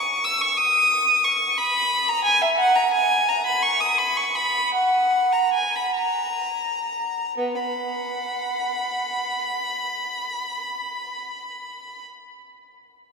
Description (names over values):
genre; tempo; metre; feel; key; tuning
classical, baroque-style suite movement for unaccompanied violin; 40-61 BPM (dotted quarters); 6/8; rubato; B major; A4 = 439 Hz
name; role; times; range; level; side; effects
rich violin; solo; 0.0-12.0 s; B3 to E6; -20 LUFS; equal; none
room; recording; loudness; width
wet cathedral reverb, RT60 4.9 s; recorded in a church or concert hall; -20 LUFS; side -5 dB against mid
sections
0.0-7.4 A section; 7.4-12.9 B section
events
slowing down 1.6-7.4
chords
none